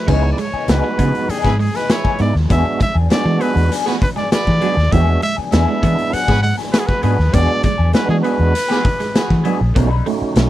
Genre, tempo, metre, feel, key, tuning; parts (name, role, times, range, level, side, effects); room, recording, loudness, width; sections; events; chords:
funk; 99 BPM; 4/4; straight; A4 = 440 Hz
clear trumpet; melody; 0.0-9.4 s; G#4 to F#5; -21 LUFS; equal
semi-hollow electric guitar; accompaniment; 0.1-10.4 s; E3 to B4; -25 LUFS; left 8 dB; wah, spring reverb
electric guitar at the edge of break-up; riff; 0.1-10.4 s; E3 to C#4; -24 LUFS; right 7 dB; ensemble chorus
tonewheel organ; stabs; 0.1-10.5 s; G#3 to F#4; -21 LUFS; right 4 dB; overdrive, fast rotary speaker
vintage muted fingered electric bass; bass; 0.1-10.5 s; A#1 to E3; -16 LUFS; equal
raw garage drum kit; drums; 0.1-10.5 s; crash cymbal, hi-hat, kick drum, snare drum; -19 LUFS; equal
warm horn section; second line; 1.4-9.6 s; E4 to B4; -24 LUFS; right 1 dB
little or no reverb; -14 LUFS; side -14 dB against mid
0.1-9.8 A section
0.1 C#m9; 2.5 E9; 9.8 B9